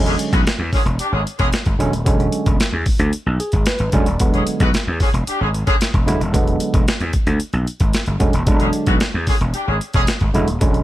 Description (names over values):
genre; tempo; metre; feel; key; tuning
funk; 112 BPM; 4/4; straight; E mixolydian; A4 = 439 Hz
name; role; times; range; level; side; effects
barky tine electric piano; stabs; 0.0-10.8 s; D3 to D5; -21 LUFS; right 2 dB; none
gritty slap bass; bass; 0.0-10.8 s; D#1 to E2; -19 LUFS; equal; overdrive
mellow horn section; second line; 0.1-10.0 s; D3 to B4; -23 LUFS; left 2 dB; none
breakbeat sampler-style drum kit; drums; 0.1-10.8 s; hi-hat, kick drum, snare drum; -18 LUFS; equal; none
room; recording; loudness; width
little or no reverb; lossy compression artefacts; -15 LUFS; side -14 dB against mid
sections
0.0-10.8 A section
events
tine electric piano fill 3.1-4.2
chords
0.0 E13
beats
0.46 0.99 1.53 | 2.06 2.60 3.13 3.66 | 4.20 4.73 5.27 5.80 | 6.34 6.87 7.41 7.94 | 8.47 9.01 9.54 10.08 | 10.61